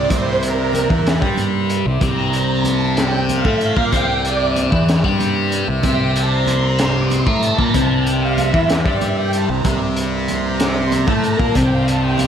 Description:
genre	psychedelic rock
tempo	63 BPM (dotted quarters)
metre	6/8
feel	straight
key	C mixolydian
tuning	A4 = 439 Hz
part	string machine, violins	sustained chords	0.0-12.3 s	Bb4 to D6	-23 LUFS	right 4 dB	ensemble chorus
part	thick fuzz guitar	riff	0.0-12.3 s	C3 to Bb4	-18 LUFS	left 1 dB	distortion, phaser
part	fuzz fingered electric bass	bass	0.0-12.3 s	C2 to Bb2	-22 LUFS	equal	overdrive
part	tanpura	drone	0.0-12.3 s	C2 to C3	-26 LUFS	right 1 dB	stereo widening
part	crunchy breakbeat drum kit	drums	0.1-12.3 s	hi-hat, kick drum, snare drum	-22 LUFS	equal	none
part	congas	percussion	0.1-12.3 s	none	-31 LUFS	right 11 dB	none
room	light reverb, small room ambience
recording	none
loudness	-15 LUFS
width	side -8 dB against mid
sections	0.0-12.3 A section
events	string machine solo 0.0-12.3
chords	0.0 C

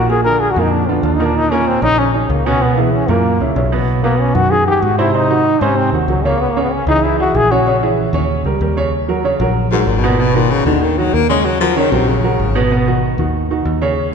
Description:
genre	jazz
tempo	190 BPM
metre	4/4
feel	straight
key	Eb minor from 8.9 s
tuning	A4 = 440 Hz
part	warm trombone	melody	0.0-7.8 s	D#3 to A#4	-16 LUFS	left 2 dB	none
part	warm grand piano	accompaniment	0.0-14.1 s	A#2 to C#5	-16 LUFS	right 3 dB	none
part	fingered electric bass	bass	0.0-14.1 s	Ab1 to G#2	-19 LUFS	equal	none
part	warm baritone saxophone	second line	9.7-12.7 s	Ab2 to Bb3	-16 LUFS	left 6 dB	none
room	wet concert hall reverb, RT60 2.2 s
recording	recorded in a church or concert hall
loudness	-12 LUFS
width	side -6 dB against mid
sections	0.0-8.9 A section; 8.9-14.1 A section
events	trombone solo 0.0-8.9; baritone saxophone solo 8.9-14.1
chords	0.1 A#; 1.4 D#5; 2.6 C#m7; 3.2 F#7; 3.9 B; 5.1 G#7; 6.4 C#m; 7.7 A#m7b5; 8.3 D#7; 8.9 Ebm7; 10.2 Abm7; 11.5 Ebm7; 12.7 Abm7

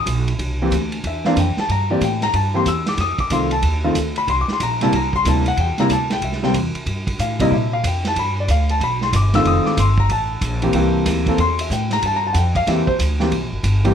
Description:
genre	jazz, small-group swing and bop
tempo	186 BPM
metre	4/4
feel	swing 64% on 8ths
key	C mixolydian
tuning	A4 = 437 Hz
part	warm concert grand piano	accompaniment	0.0-13.9 s	C3 to E6	-19 LUFS	left 1 dB	none
part	upright bass	bass	0.0-13.9 s	F1 to Bb2	-20 LUFS	equal	none
part	vintage drum kit	drums	0.1-13.9 s	hi-hat, kick drum, ride cymbal, snare drum	-25 LUFS	right 3 dB	none
room	moderate club reverb, RT60 0.6 s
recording	none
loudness	-16 LUFS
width	side -8 dB against mid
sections	0.0-13.3 A section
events	none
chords	0.4 C7; 3.0 F7; 4.3 C7; 8.2 G7; 9.4 F7; 10.7 C7

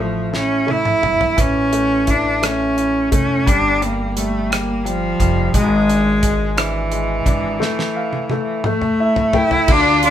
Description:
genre	six-eight pop ballad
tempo	58 BPM (dotted quarters)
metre	6/8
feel	straight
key	unclear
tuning	A4 = 441 Hz
part	rich cello	melody	0.0-10.1 s	E3 to E4	-17 LUFS	right 1 dB	none
part	clear baby grand piano	accompaniment	0.0-10.1 s	D3 to G5	-23 LUFS	left 4 dB	none
part	upright bass	bass	0.0-10.1 s	F1 to D2	-23 LUFS	equal	none
part	damped 70s drum kit	drums	0.3-10.1 s	crash cymbal, hi-hat, kick drum, rim click, snare drum, toms	-20 LUFS	equal	none
part	dark studio violin section	second line	9.7-10.1 s	F4	-20 LUFS	right 2 dB	none
room	moderate studio reverb, RT60 0.8 s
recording	band playing live in one room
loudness	-15 LUFS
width	side -10 dB against mid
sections	0.0-9.7 A section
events	drum fill 0.3-1.4, 7.6-9.7; grand piano fill 8.6-9.7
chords	0.0 A; 3.5 Fsus2; 5.5 E7/G#; 7.6 Fmaj7/E; 8.6 A5

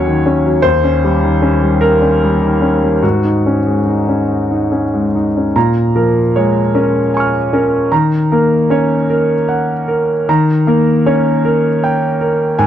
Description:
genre	neoclassical minimalist piano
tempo	51 BPM (dotted quarters)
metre	6/8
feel	rubato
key	unclear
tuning	A4 = 439 Hz
part	warm concert grand piano	solo	0.0-12.7 s	Eb2 to F6	-11 LUFS	equal	none
room	light reverb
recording	dry, close 1970s-style studio recording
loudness	-11 LUFS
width	side -10 dB against mid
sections	0.0-5.6 A section; 5.6-12.7 B section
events	none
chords	0.0 Ebm7; 0.6 Eb7; 3.0 Ab7sus4; 5.6 Bbm7; 7.9 Ebm7; 10.3 Eb7

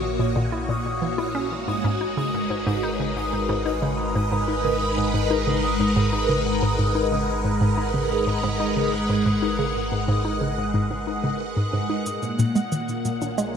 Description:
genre	ambient, sequencer-driven space music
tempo	91 BPM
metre	4/4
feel	straight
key	G# minor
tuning	A4 = 440 Hz
part	phased string machine	sustained chords	0.0-13.6 s	A#2 to F#5	-24 LUFS	equal	ensemble chorus, phaser
part	analog drone	bass	0.0-13.6 s	G#1 to A#1	-32 LUFS	equal	chorus
part	pulsing gated texture	texture	0.0-13.6 s	F#5 to D#6	-31 LUFS	left 1 dB	chorus, built-in reverb
part	hollow square pluck	riff	0.2-13.6 s	G#2 to E4	-25 LUFS	equal	chorus, ping-pong delay
part	shaker and bongos	percussion	12.1-13.5 s	none	-35 LUFS	right 2 dB	ping-pong delay
room	wet spring reverb, RT60 2.3 s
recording	echo-heavy mix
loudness	-21 LUFS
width	side -7 dB against mid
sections	0.0-13.6 A section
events	none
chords	0.0 A#dim; 1.5 G#m7; 12.1 A#m7

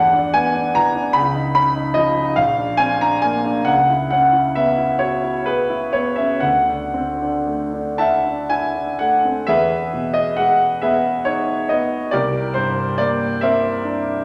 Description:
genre	classical, impressionist solo piano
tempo	38-49 BPM (dotted quarters)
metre	6/8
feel	rubato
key	unclear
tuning	A4 = 440 Hz
part	clear concert grand piano	solo	0.0-14.2 s	Bb1 to B5	-18 LUFS	equal	none
room	wet recital hall reverb, RT60 1.4 s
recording	none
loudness	-19 LUFS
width	mono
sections	0.0-9.5 A section; 9.5-14.2 B section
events	none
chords	0.0 E5; 1.2 Dbadd9; 2.4 Bbadd9; 3.7 C#m7; 6.4 D9; 9.5 Emaj7; 12.1 Csus2

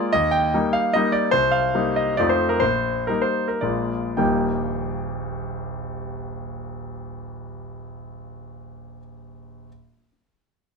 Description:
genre	classical, romantic triple-time dance for piano with dotted rhythms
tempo	101-159 BPM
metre	3/4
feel	rubato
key	Eb major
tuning	A4 = 440 Hz
part	bright concert grand piano	solo	0.0-9.7 s	Eb1 to G5	-21 LUFS	equal	none
room	light reverb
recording	close, detailed microphones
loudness	-20 LUFS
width	side -5 dB against mid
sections	0.0-4.2 A section; 4.2-7.5 B section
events	slowing down 0.7-4.2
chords	0.1 Eb; 1.3 Cm7; 2.2 F7; 2.6 Eb/Bb; 3.6 Bb7; 4.2 Eb

